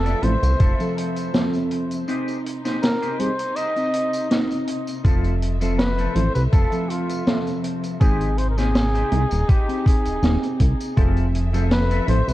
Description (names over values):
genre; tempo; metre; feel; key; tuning
vaporwave; 81 BPM; 4/4; swing 53% on 16ths; unclear; A4 = 440 Hz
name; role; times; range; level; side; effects
warm flugelhorn; melody; 0.0-12.3 s; F4 to Eb5; -27 LUFS; equal; tape echo
mellow FM electric piano; accompaniment; 0.0-12.2 s; F3 to E5; -26 LUFS; equal; lush chorus, tape echo
clear symphonic string section; sustained chords; 0.0-12.3 s; C3 to E5; -35 LUFS; right 1 dB; none
clean electric guitar; riff; 0.0-12.2 s; Eb4 to D5; -34 LUFS; left 3 dB; analog chorus, tape echo
chorused synth bass; bass; 0.0-12.3 s; Eb1 to C2; -20 LUFS; equal; none
street-band drum kit; drums; 0.1-12.3 s; hi-hat, snare drum, tambourine; -25 LUFS; equal; none
electronic kick drum; drums; 0.6-11.1 s; none; -17 LUFS; equal; none
room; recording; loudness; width
small room reverb; dark, warm production, cassette tape; -18 LUFS; side -16 dB against mid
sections
0.0-12.3 A section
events
break 2.1-5.0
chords
0.0 Fmaj7; 2.1 Abmaj7; 5.0 Fmaj7; 8.0 Abmaj7; 11.0 Fmaj7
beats
0.60 1.34 | 2.08 2.82 3.56 4.30 | 5.05 5.79 6.53 7.27 | 8.01 8.75 9.49 10.23 | 10.97 11.71